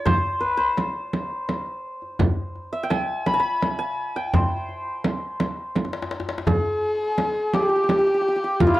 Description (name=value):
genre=Persian modal ensemble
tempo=56 BPM (dotted quarters)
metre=6/8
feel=straight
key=C dastgah chahargah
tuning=A4 = 438 Hz
part: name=santur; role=melody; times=0.0-8.8 s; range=E4 to B5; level=-24 LUFS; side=equal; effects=none
part: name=frame drum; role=percussion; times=0.1-8.8 s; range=none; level=-24 LUFS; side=right 2 dB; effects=none
part: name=tombak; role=percussion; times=0.1-8.8 s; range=none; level=-27 LUFS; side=left 2 dB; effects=none
part: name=rich kamancheh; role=second line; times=6.5-8.8 s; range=F4 to A4-50c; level=-26 LUFS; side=left 2 dB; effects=none
room=light reverb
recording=dry, close 1970s-style studio recording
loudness=-21 LUFS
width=side -16 dB against mid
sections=0.0-6.5 A section; 6.5-8.8 B section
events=drum fill 5.8-6.5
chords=none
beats=| 0.07 1.13 | 2.20 3.27 | 4.33 5.40 | 6.47 7.54 | 8.60